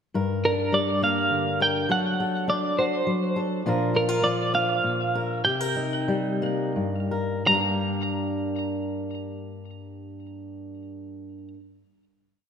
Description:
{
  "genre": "indie folk with a building arrangement",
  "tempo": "55-69 BPM (dotted quarters)",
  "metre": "6/8",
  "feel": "straight",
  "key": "G minor",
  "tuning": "A4 = 441 Hz",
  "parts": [
    { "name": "fingerpicked steel-string acoustic guitar", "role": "accompaniment", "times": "0.1-11.6 s", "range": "G2 to Bb4", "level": "-26 LUFS", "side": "left 1 dB", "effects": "none" },
    { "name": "twelve-string electric guitar", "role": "melody", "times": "0.5-11.5 s", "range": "Bb4 to Bb5", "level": "-24 LUFS", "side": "right 1 dB", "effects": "tremolo, digital delay" }
  ],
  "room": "wet scoring stage reverb, RT60 1.4 s",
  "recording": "none",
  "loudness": "-22 LUFS",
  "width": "side -7 dB against mid",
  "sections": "0.2-7.5 verse; 7.5-11.8 final chord",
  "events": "slowing down 3.6-7.5",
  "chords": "0.2 Gm; 1.9 D7/F#; 3.6 Bb; 5.5 Cm7; 7.5 Gm"
}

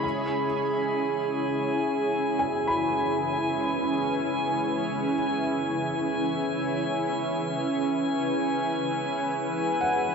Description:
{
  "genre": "ambient",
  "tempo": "free time",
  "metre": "none",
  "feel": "none",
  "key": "C# minor",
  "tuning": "A4 = 440 Hz",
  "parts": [
    { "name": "granular cloud pad", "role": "sustained chords", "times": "0.0-10.1 s", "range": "C#4 to C#5", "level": "-26 LUFS", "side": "right 1 dB", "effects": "built-in reverb" },
    { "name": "felt-muted upright piano", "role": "arpeggios", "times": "0.0-10.1 s", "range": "F#5 to B5", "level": "-32 LUFS", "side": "left 1 dB", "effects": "diffuse ambient delay" },
    { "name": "drifting glass-harmonics texture", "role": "texture", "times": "0.0-10.1 s", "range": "G#5", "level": "-31 LUFS", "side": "left 1 dB", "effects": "chorus, built-in reverb" }
  ],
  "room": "wet cathedral reverb, RT60 6.7 s",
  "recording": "none",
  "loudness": "-24 LUFS",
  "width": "side -5 dB against mid",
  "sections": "0.0-10.1 A section",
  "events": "none",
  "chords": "0.0 C#m7"
}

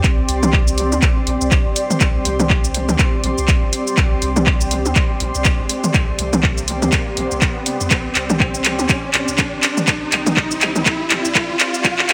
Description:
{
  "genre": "minimal techno",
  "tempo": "122 BPM",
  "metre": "4/4",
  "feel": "swing 58% on 16ths",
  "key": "unclear",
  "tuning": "A4 = 440 Hz",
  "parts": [
    { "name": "punchy sub bass", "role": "bass", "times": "0.0-12.1 s", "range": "G1 to F2", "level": "-27 LUFS", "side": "equal", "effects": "sidechain pumping" },
    { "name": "electronic kick drum", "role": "drums", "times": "0.0-12.0 s", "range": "none", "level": "-20 LUFS", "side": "equal", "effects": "none" },
    { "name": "punchy analog drum machine", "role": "drums", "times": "0.0-12.1 s", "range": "cabasa, handclaps, hi-hat", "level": "-21 LUFS", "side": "equal", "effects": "none" },
    { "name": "riser", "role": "sound effects", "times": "3.7-12.1 s", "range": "none", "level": "-29 LUFS", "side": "equal", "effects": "none" },
    { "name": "granular cloud pad", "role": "texture", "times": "0.0-12.1 s", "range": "C4 to C6", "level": "-26 LUFS", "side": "equal", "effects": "built-in reverb, sidechain pumping" },
    { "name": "electronic toms", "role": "percussion", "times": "0.4-10.8 s", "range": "none", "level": "-24 LUFS", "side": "equal", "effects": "analog delay" }
  ],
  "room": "light reverb",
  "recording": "echo-heavy mix, high-pass filter",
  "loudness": "-17 LUFS",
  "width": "mono",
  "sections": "0.0-12.1 A section",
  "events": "build-up 0.0-12.1; drum fill 0.0-12.1; filter sweep 0.0-12.1; riser 3.7-12.1",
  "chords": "0.0 C5"
}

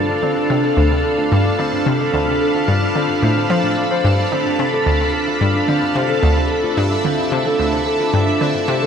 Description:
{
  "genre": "ambient, sequencer-driven space music",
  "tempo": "110 BPM",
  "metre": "4/4",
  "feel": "straight",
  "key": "D dorian",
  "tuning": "A4 = 440 Hz",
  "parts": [
    { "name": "string machine, full ensemble", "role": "sustained chords", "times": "0.0-8.9 s", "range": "D4 to B5", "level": "-19 LUFS", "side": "right 2 dB", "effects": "ensemble chorus, shimmer reverb" },
    { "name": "concert harp", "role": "arpeggios", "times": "0.0-8.9 s", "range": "C4 to F5", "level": "-21 LUFS", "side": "left 3 dB", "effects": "auto-pan, analog delay, shimmer reverb" },
    { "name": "analog pluck", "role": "riff", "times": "0.0-8.9 s", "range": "D2 to F3", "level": "-19 LUFS", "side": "equal", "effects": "chorus, analog delay" },
    { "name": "bubbling stepped-filter texture", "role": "texture", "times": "0.0-8.9 s", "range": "A5", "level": "-28 LUFS", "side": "right 4 dB", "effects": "chorus, built-in reverb, shimmer reverb" }
  ],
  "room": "wet plate reverb, RT60 3.6 s",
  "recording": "none",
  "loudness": "-15 LUFS",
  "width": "side -7 dB against mid",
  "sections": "0.0-8.9 A section",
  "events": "filter sweep on synth arpeggio sound 0.0-8.9",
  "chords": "0.0 Dm7"
}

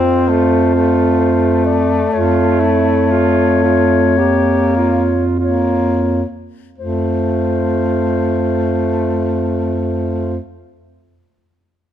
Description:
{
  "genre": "classical, lyrical piece for single-reed quartet",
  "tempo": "42-68 BPM",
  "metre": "4/4",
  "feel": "rubato",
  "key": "F major",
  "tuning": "A4 = 439 Hz",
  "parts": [
    { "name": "mellow clarinet", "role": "melody", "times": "0.0-10.4 s", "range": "C5 to D5", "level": "-20 LUFS", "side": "left 6 dB", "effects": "none" },
    { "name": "warm alto saxophone", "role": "second line", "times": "0.0-10.4 s", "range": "E4 to G4", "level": "-20 LUFS", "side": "right 9 dB", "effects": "none" },
    { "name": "mellow tenor saxophone", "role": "accompaniment", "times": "0.0-10.4 s", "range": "A3 to C4", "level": "-18 LUFS", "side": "left 3 dB", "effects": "none" },
    { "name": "warm bass clarinet", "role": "bass", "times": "0.0-10.4 s", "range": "F2", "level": "-17 LUFS", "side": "right 1 dB", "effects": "none" }
  ],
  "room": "light reverb",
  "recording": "close, detailed microphones",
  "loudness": "-13 LUFS",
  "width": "side -10 dB against mid",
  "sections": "0.0-6.8 A section; 6.8-11.9 B section",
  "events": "slowing down 0.0-6.8",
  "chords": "0.0 F; 2.1 Bbm/F; 6.8 F"
}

